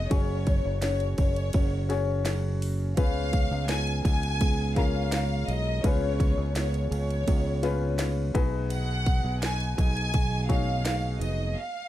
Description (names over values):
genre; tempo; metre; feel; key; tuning
piano-driven pop; 84 BPM; 4/4; straight; B lydian; A4 = 444 Hz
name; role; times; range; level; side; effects
rich studio violin section; melody; 0.0-11.9 s; C#5 to G#5; -33 LUFS; left 1 dB; none
warm upright piano; accompaniment; 0.0-11.6 s; B2 to C#5; -34 LUFS; left 7 dB; none
fingerpicked plugged-in steel-string acoustic guitar; riff; 0.0-11.6 s; B2 to G#4; -35 LUFS; right 6 dB; none
fingered electric bass; bass; 0.0-11.5 s; E#1 to C#2; -28 LUFS; equal; none
house drum kit; drums; 0.1-11.4 s; hi-hat, kick drum, ride cymbal, snare drum; -27 LUFS; equal; none
room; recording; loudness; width
light reverb; dark, warm production; -24 LUFS; side -13 dB against mid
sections
0.0-11.9 A section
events
band accent 11.6-11.9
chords
0.1 F#sus2; 3.0 C#7; 8.3 B6